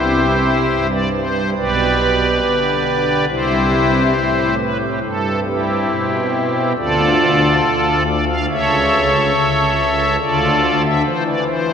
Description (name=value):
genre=classical, chorale-style piece for pipe organ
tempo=69 BPM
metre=4/4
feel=straight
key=C major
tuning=A4 = 440 Hz
part: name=pipe organ, strings celeste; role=solo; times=0.0-11.7 s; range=B1 to F5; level=-14 LUFS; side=equal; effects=none
room=wet cathedral reverb, RT60 5.6 s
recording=none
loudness=-14 LUFS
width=side -7 dB against mid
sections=0.0-11.7 A section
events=none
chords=0.0 C; 1.6 G/B; 3.3 C; 6.8 Dm; 8.5 A/C#; 10.2 Dm